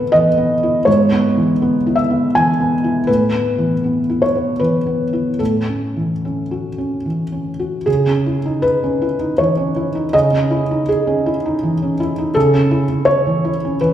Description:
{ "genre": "neoclassical minimalist piano", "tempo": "72-83 BPM", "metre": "3/4", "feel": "rubato", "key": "C# minor", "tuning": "A4 = 439 Hz", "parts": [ { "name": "felt-muted upright piano", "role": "solo", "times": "0.0-13.9 s", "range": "G#2 to G#5", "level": "-14 LUFS", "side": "equal", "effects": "none" } ], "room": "wet recital hall reverb, RT60 1.6 s", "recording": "recorded in a church or concert hall", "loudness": "-14 LUFS", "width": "side -11 dB against mid", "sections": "0.0-7.9 A section; 7.9-13.9 B section", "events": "none", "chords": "0.0 Asus2; 0.9 C#m7/G#; 3.1 Asus2; 5.4 F#m7/A; 7.9 C#madd9; 12.3 A/C#" }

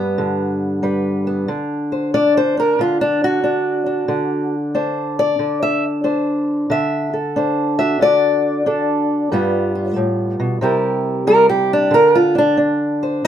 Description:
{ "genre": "acoustic country blues, solo or duo", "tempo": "92 BPM", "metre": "4/4", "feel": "swing 66% on 8ths", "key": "unclear", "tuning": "A4 = 439 Hz", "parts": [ { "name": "fingerpicked old ladder-braced acoustic guitar", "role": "solo", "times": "0.0-13.3 s", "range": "G2 to E5", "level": "-15 LUFS", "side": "equal", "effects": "none" } ], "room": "moderate small room reverb, RT60 0.5 s", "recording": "minimal, uncompressed stereo recording", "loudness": "-15 LUFS", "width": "side -10 dB against mid", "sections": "0.0-13.3 A section", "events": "steel-string acoustic guitar solo 0.0-13.3", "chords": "0.0 G; 1.5 D7; 9.3 G7; 10.6 C7; 11.9 Dm7" }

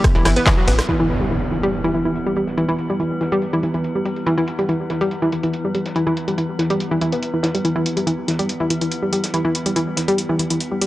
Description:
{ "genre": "driving peak-time techno", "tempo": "142 BPM", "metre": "4/4", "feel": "straight", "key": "E minor", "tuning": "A4 = 440 Hz", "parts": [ { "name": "analog pluck", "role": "riff", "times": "0.0-10.9 s", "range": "E3 to B3", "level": "-19 LUFS", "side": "equal", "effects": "chorus, tube saturation, sidechain pumping, analog delay" }, { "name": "metallic inharmonic drone", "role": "drone", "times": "0.0-10.9 s", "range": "E3 to B3", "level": "-27 LUFS", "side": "equal", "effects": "chorus, built-in reverb, sidechain pumping" }, { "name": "electronic kick drum", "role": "drums", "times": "0.0-0.6 s", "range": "none", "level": "-17 LUFS", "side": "equal", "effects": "none" }, { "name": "modern studio drum kit", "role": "drums", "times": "0.0-10.9 s", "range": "hi-hat, snare drum", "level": "-35 LUFS", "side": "equal", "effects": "none" }, { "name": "techno drum kit", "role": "drums", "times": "0.0-10.9 s", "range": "crash cymbal, handclaps, hi-hat, ride cymbal, rim click", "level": "-24 LUFS", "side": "equal", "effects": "sidechain pumping on hats, low-pass filter on hats, sidechain pumping on cymbals, low-pass filter on cymbals, low-pass filter on snare, low-pass filter on room" }, { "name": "tight sequencer bass", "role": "bass", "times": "0.2-0.8 s", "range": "G1 to A1", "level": "-19 LUFS", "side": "equal", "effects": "sidechain pumping" }, { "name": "impact", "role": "sound effects", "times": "0.9-2.6 s", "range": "none", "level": "-25 LUFS", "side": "equal", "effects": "none" } ], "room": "moderate lush hall reverb, RT60 2.5 s", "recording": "dry, gritty hardware recording, transformer saturation", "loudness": "-18 LUFS", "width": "side -16 dB against mid", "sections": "0.9-10.9 A section", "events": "band accent 0.5; impact 0.9-2.6; filter sweep on drum 0.9-10.9", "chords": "0.0 Em" }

